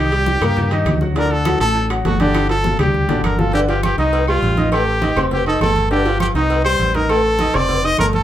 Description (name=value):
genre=latin, salsa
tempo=202 BPM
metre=4/4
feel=straight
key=G minor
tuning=A4 = 440 Hz
part: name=bright trumpet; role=melody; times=0.0-8.2 s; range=Eb4 to Eb5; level=-20 LUFS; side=equal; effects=none
part: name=bright upright piano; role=accompaniment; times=0.0-8.2 s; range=D3 to Eb6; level=-20 LUFS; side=equal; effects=none
part: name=fingered electric bass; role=bass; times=0.0-8.2 s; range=F1 to G2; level=-20 LUFS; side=equal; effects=none
part: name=bongos and cowbell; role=percussion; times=0.1-8.2 s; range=none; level=-26 LUFS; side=left 2 dB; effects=none
part: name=congas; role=percussion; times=0.1-8.2 s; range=none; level=-25 LUFS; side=right 1 dB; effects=none
part: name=timbales and agogo bells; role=percussion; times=0.1-8.1 s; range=none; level=-27 LUFS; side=right 2 dB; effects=none
part: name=claves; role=percussion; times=0.4-8.1 s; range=none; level=-35 LUFS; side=left 4 dB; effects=none
room=wet small room reverb, RT60 0.6 s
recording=band playing live in one room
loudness=-14 LUFS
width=side -11 dB against mid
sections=0.0-3.5 A section; 3.5-8.2 B section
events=drum fill 2.3-3.5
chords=0.0 Cm9; 1.2 D; 2.3 Gsus2; 3.5 G5; 4.1 Cm; 4.7 Am7b5; 5.3 F7; 5.9 G5; 6.5 Cm; 7.1 Adim; 7.7 F7